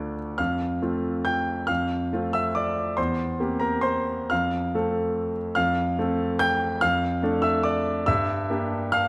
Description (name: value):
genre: classical, piano waltz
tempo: 140 BPM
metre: 3/4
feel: uneven beats, rubato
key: unclear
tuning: A4 = 442 Hz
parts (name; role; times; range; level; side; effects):
- clear concert grand piano; solo; 0.0-9.1 s; D2 to G6; -25 LUFS; equal; none
room: moderate scoring stage reverb, RT60 1.6 s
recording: none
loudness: -25 LUFS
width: mono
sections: 0.0-9.1 A section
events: none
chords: 0.4 F; 3.0 C7/E; 4.3 F; 6.8 Dm/F; 8.1 Gm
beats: | 0.39 0.81 1.26 | 1.69 2.13 2.56 | 2.98 3.39 3.83 | 4.31 4.74 5.16 | 5.56 5.97 6.40 | 6.82 7.23 7.66 | 8.08 8.50 8.93